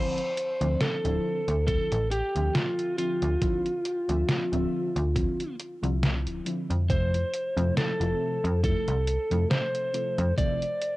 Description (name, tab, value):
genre	vaporwave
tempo	69 BPM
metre	4/4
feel	swing 55% on 16ths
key	D minor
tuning	A4 = 442 Hz
part	lightly driven lead guitar	melody	0.0-11.0 s	F4 to D5	-29 LUFS	equal	cassette tape, tape echo
part	warbly lo-fi synth keys	accompaniment	0.0-10.6 s	C3 to E5	-33 LUFS	equal	lush chorus, vintage 12-bit sampler grit, cassette tape, analog delay
part	detuned 8-bit digital drum machine	drums	0.2-11.0 s	hi-hat, snare drum	-30 LUFS	equal	vintage 12-bit sampler grit
part	slap-like FM bass	bass	0.6-10.3 s	D1 to F2	-26 LUFS	equal	none
part	electronic kick drum	drums	1.7-10.6 s	none	-29 LUFS	equal	vintage 12-bit sampler grit
room	little or no reverb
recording	home recording on cassette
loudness	-24 LUFS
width	side -18 dB against mid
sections	0.0-11.0 A section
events	none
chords	0.0 Dm9; 6.9 Fmaj7